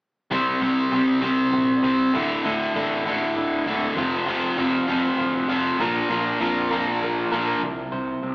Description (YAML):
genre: rock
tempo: 66 BPM (dotted quarters)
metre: 6/8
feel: straight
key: unclear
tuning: A4 = 440 Hz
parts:
  - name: electric guitar through a small old amp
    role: arpeggios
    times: 0.3-8.3 s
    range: A2 to C5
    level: -26 LUFS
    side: right 1 dB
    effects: harmonic tremolo
  - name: overdriven semi-hollow guitar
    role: riff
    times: 0.3-7.6 s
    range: D2 to C4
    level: -21 LUFS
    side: equal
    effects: none
  - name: fuzz picked electric bass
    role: bass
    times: 0.3-8.3 s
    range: D1 to F2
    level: -33 LUFS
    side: equal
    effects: overdrive
room: moderate lush hall reverb, RT60 2.8 s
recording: live gig heard through the venue's PA, club reverb, small speaker sound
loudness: -20 LUFS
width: side -26 dB against mid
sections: 0.3-7.6 A section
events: none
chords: 0.3 C5; 2.1 Dsus2; 4.0 Fsus2; 5.8 Bb; 7.6 C5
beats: | 0.31 1.23 | 2.14 3.06 | 3.97 4.88 | 5.80 6.71 | 7.63